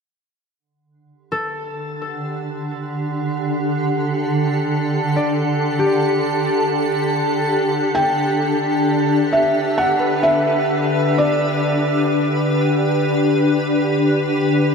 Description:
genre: ambient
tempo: free time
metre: none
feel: none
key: unclear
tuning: A4 = 442 Hz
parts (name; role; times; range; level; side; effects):
- granular cloud pad; sustained chords; 1.8-14.7 s; D3 to A5; -18 LUFS; equal; built-in reverb
- organ-like drone; drone; 1.5-14.7 s; D3; -25 LUFS; equal; ensemble chorus, built-in reverb
- concert harp; arpeggios; 1.3-12.1 s; G4 to D5; -27 LUFS; left 2 dB; ping-pong delay
- felt-muted upright piano; melody; 7.9-14.4 s; D5 to G5; -21 LUFS; equal; ping-pong delay
room: wet shimmer reverb, RT60 6.1 s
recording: none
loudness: -16 LUFS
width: side -5 dB against mid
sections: 0.6-14.7 A section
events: fade-in on synth drone 0.6-14.7; fade-out on harp 0.6-14.7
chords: 0.6 Dsus4

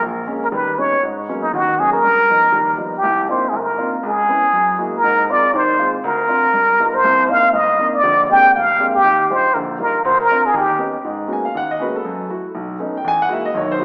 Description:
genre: jazz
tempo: 240 BPM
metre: 4/4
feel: swing 58% on 8ths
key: C minor from 3.0 s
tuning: A4 = 440 Hz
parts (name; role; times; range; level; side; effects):
- trumpet with plunger mute; melody; 0.0-10.9 s; D#4 to G5; -16 LUFS; equal; none
- warm baby grand piano; accompaniment; 0.0-13.8 s; F1 to G#5; -24 LUFS; equal; none
room: wet recital hall reverb, RT60 1.5 s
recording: recorded in a church or concert hall, small speaker sound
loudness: -17 LUFS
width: mono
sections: 0.0-3.0 A section; 3.0-11.0 B section; 11.0-13.8 C section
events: none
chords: 0.0 A#m7; 0.5 D#7b13; 1.0 G#m11; 2.0 G7alt; 3.0 Cm11; 4.0 Dbm7; 4.5 F#9; 5.0 Ab6; 6.0 Bbadd9/D; 6.5 G7alt; 7.0 Cm9; 8.0 Bb13; 9.0 Ebmaj9; 10.0 Dm7; 10.5 Eb7b13; 11.0 G#m11; 12.0 F#m7; 12.5 B9; 13.0 Emaj9#11

